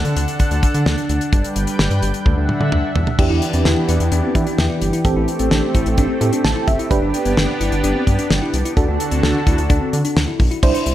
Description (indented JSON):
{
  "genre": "synth-pop",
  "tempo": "129 BPM",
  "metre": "4/4",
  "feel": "straight",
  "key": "unclear",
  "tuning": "A4 = 439 Hz",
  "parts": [
    { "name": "lush unison pad", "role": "sustained chords", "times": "0.0-10.6 s", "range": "D3 to G5", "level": "-22 LUFS", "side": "equal", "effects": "chorus" },
    { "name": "rubbery square bass", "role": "bass", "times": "0.0-10.9 s", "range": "F#1 to E3", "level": "-20 LUFS", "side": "equal", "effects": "none" },
    { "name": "damped 70s drum kit", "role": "drums", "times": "0.0-10.9 s", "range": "crash cymbal, hi-hat, kick drum, snare drum, toms", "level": "-19 LUFS", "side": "equal", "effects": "none" },
    { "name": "FM electric piano with tremolo", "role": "accompaniment", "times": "3.2-10.9 s", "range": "C4 to A5", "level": "-22 LUFS", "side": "right 4 dB", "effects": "none" },
    { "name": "bell-like tine electric piano", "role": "arpeggios", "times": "3.3-10.9 s", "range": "B3 to E4", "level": "-24 LUFS", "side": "left 3 dB", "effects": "medium stereo tremolo, tape echo" }
  ],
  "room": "moderate recital hall reverb, RT60 1.4 s",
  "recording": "none",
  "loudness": "-15 LUFS",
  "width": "side -13 dB against mid",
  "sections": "0.0-3.2 A section; 3.2-10.6 B section",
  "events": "drum fill 2.3-3.2; FM electric piano fill 6.2-6.9",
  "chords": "0.0 D; 1.3 G; 2.3 Dadd9; 3.2 Em7; 5.0 Am7; 6.9 G; 8.8 D"
}